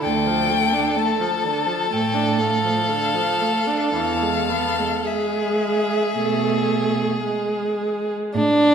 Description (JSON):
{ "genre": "classical, slow romantic movement for string quartet", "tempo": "54-65 BPM", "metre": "4/4", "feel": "rubato", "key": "unclear", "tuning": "A4 = 442 Hz", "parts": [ { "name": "rich violin", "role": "melody", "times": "0.0-7.3 s", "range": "E5 to A5", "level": "-25 LUFS", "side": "left 8 dB", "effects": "none" }, { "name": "clear violin", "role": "second line", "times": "0.0-8.7 s", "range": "D4 to A4", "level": "-22 LUFS", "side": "left 1 dB", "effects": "none" }, { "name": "rich viola", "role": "accompaniment", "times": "0.0-8.3 s", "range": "D3 to D4", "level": "-24 LUFS", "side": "right 3 dB", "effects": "none" }, { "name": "clear cello", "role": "bass", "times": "0.0-8.7 s", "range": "D2 to B2", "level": "-26 LUFS", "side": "right 5 dB", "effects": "none" } ], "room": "wet recital hall reverb, RT60 1.4 s", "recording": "minimal, uncompressed stereo recording, lossy compression artefacts", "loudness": "-19 LUFS", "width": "side -7 dB against mid", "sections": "0.0-8.3 A section", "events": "none", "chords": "0.0 Dm; 3.9 E" }